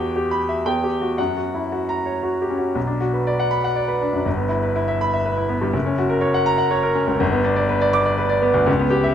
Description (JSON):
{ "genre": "classical, virtuoso piano study", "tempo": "121 BPM", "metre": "3/4", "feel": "rubato", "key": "B minor", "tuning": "A4 = 438 Hz", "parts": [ { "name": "clear grand piano", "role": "solo", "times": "0.0-9.1 s", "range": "F#1 to D6", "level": "-18 LUFS", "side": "equal", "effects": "none" } ], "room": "moderate recital hall reverb, RT60 1.7 s", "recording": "close, detailed microphones", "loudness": "-18 LUFS", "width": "side -9 dB against mid", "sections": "0.0-2.8 A section; 2.8-9.1 B section", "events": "none", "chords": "0.0 Em; 0.7 Emadd9; 1.2 F#; 2.8 Bm; 4.3 Em/G; 5.7 F#; 7.2 G", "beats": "0.16 0.66 | 1.18 1.71 2.23 | 2.76 3.26 3.76 | 4.26 4.76 5.25 | 5.74 6.23 6.72 | 7.21 7.70 8.19 | 8.68" }